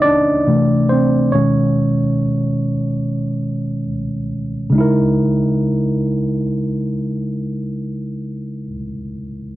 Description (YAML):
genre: R&B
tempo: free time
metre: none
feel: none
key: C# dorian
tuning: A4 = 440 Hz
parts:
  - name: tine electric piano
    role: solo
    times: 0.0-9.6 s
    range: B2 to D#5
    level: -16 LUFS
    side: equal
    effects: none
room: little or no reverb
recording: dry, close 1970s-style studio recording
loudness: -15 LUFS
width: side -15 dB against mid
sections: 0.0-4.7 A section; 4.7-8.2 B section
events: tine electric piano solo 0.0-4.7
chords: 0.4 C69; 1.3 B69; 4.7 C#m69